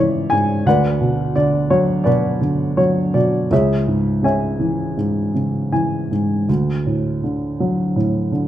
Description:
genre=classical, lyrical solo piano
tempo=78-87 BPM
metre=4/4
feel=rubato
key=unclear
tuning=A4 = 436 Hz
part: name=dark grand piano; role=solo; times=0.0-8.5 s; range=C#2 to G#5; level=-16 LUFS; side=equal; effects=none
room=moderate recital hall reverb, RT60 1.4 s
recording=none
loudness=-16 LUFS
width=side -12 dB against mid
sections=0.0-8.5 A section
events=grand piano fill 5.3-6.5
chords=0.0 C#m; 0.7 Bm/D; 3.5 C#m; 6.5 D

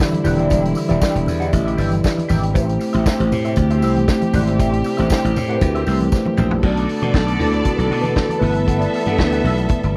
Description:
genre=disco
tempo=118 BPM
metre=4/4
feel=straight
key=E minor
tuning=A4 = 440 Hz
part: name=electric guitar through a small old amp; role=accompaniment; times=0.0-9.9 s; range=F#4 to F#5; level=-30 LUFS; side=equal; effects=wah, analog chorus
part: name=mellow tine electric piano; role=accompaniment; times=0.0-10.0 s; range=E3 to G5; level=-24 LUFS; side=equal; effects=none
part: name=dark chamber string section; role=sustained chords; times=0.0-10.0 s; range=C3 to A4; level=-27 LUFS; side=equal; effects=none
part: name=vintage drum kit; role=drums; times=0.0-9.9 s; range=crash cymbal, hi-hat, kick drum, snare drum, toms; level=-24 LUFS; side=equal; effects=none
part: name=congas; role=percussion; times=0.0-9.9 s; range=none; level=-29 LUFS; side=equal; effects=none
part: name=tambourine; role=percussion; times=0.2-6.5 s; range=none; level=-42 LUFS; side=equal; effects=none
part: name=slap bass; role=bass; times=0.3-9.9 s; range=D#1 to B2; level=-22 LUFS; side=equal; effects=none
part: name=clear studio string section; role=second line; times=6.6-10.0 s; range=B3 to E5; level=-27 LUFS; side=equal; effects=none
room=studio reverb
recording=dry, close 1970s-style studio recording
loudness=-18 LUFS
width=mono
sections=0.0-6.6 A section; 6.6-10.0 B section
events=tine electric piano fill 1.5-2.5; drum fill 6.1-6.6; tine electric piano solo 6.6-10.0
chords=0.0 Em7; 2.5 Am7; 6.6 Bm7; 8.4 G69

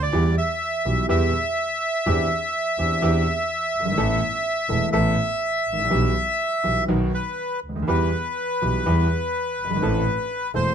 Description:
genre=tango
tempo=124 BPM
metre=4/4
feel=rubato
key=E minor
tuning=A4 = 440 Hz
part: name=bandoneon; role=melody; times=0.0-10.7 s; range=B4 to E5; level=-23 LUFS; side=equal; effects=none
part: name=warm concert grand piano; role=accompaniment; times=0.0-10.7 s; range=E1 to A4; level=-24 LUFS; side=equal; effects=none
part: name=rich double bass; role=bass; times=0.0-10.7 s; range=E1 to E2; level=-25 LUFS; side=right 1 dB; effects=none
room=light reverb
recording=close, detailed microphones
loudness=-20 LUFS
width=side -8 dB against mid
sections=0.1-10.7 A section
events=none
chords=0.1 Em; 2.1 Cadd9/E; 4.0 Asus2; 5.9 Em/B; 6.9 B; 7.9 Em; 9.8 Am

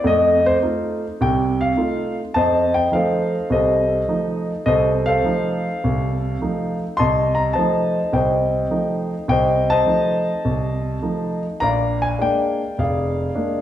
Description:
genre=solo jazz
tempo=104 BPM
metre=4/4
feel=swing 69% on 8ths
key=F mixolydian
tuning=A4 = 437 Hz
part: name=warm concert grand piano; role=solo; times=0.0-13.6 s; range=F1 to C6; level=-17 LUFS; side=equal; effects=none
room=wet recital hall reverb, RT60 1.4 s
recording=recorded in a church or concert hall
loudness=-17 LUFS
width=side -11 dB against mid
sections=0.0-2.3 A section; 2.3-13.6 B section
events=grand piano solo 0.0-2.3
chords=0.0 F7; 11.6 Bb7

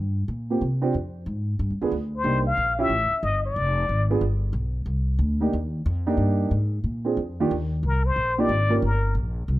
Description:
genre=jazz, small-group swing and bop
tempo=182 BPM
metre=4/4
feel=swing 64% on 8ths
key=C minor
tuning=A4 = 441 Hz
part: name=upright bass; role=bass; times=0.0-9.6 s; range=F1 to C3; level=-24 LUFS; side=equal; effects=none
part: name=dark grand piano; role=accompaniment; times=0.5-8.8 s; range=Eb3 to Bb4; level=-25 LUFS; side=right 3 dB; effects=none
part: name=trumpet with plunger mute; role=melody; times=2.2-4.1, 7.9-9.1 s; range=Bb4 to F5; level=-24 LUFS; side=left 3 dB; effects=none
room=little or no reverb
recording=close, detailed microphones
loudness=-22 LUFS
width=side -16 dB against mid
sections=0.0-7.5 A section; 7.5-9.6 B section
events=none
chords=0.0 Eb6 (rootless); 0.9 Fm; 1.6 G7b9; 2.2 Cm9; 2.9 A5; 3.6 Ddim; 4.2 G; 4.9 Cm7; 6.8 Bb7; 7.5 Ebmaj7; 8.8 Gm

